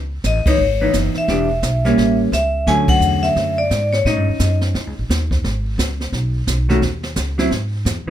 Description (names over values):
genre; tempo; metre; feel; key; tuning
jazz, small-group swing and bop; 173 BPM; 4/4; swing 63% on 8ths; C# minor; A4 = 441 Hz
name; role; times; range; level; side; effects
upright bass; bass; 0.0-8.1 s; E1 to A2; -20 LUFS; equal; none
jazz brush drum kit; drums; 0.2-8.1 s; brushed snare drum, hi-hat, kick drum, ride cymbal, snare drum; -22 LUFS; right 1 dB; none
vibraphone with medium hard mallets; melody; 0.3-4.6 s; C#5 to G#5; -19 LUFS; left 2 dB; none
hollow-body jazz guitar; accompaniment; 0.5-8.1 s; D3 to G4; -19 LUFS; right 1 dB; none
room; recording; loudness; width
moderate studio ambience, RT60 0.5 s; none; -15 LUFS; side -11 dB against mid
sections
0.0-8.1 A section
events
band accent 0.4, 2.8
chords
0.0 C#m9; 1.3 Em7; 2.0 A7b9; 2.7 Dmaj7; 4.1 A(#11); 5.4 G#m; 6.8 C#madd9; 7.5 N.C.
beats
0.24 0.59 0.94 | 1.28 1.63 1.97 2.32 | 2.67 3.01 3.36 3.71 | 4.05 4.40 4.74 5.09 | 5.43 5.78 6.13 6.47 | 6.82 7.16 7.51 7.86